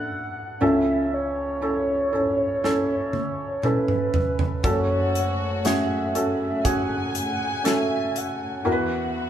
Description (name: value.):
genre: pop ballad.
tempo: 60 BPM.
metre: 4/4.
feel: straight.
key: F# minor.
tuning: A4 = 441 Hz.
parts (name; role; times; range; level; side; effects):
mellow horn-like synth lead; melody; 0.0-9.3 s; B4 to F#5; -27 LUFS; right 1 dB; chorus.
felt-muted upright piano; accompaniment; 0.0-9.3 s; F#1 to B4; -24 LUFS; equal; none.
modern studio drum kit; drums; 2.6-8.4 s; hi-hat, kick drum, snare drum, toms; -26 LUFS; right 1 dB; none.
dark studio string section; sustained chords; 4.6-9.3 s; C#3 to G#5; -30 LUFS; left 1 dB; none.
room: wet stone room reverb, RT60 1.3 s.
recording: band playing live in one room, lossy compression artefacts.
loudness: -21 LUFS.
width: side -10 dB against mid.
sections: 0.0-9.3 A section.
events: drum fill 2.6-4.6.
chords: 0.0 Dsus2; 0.6 A/C#; 4.6 F#m; 8.7 Esus2.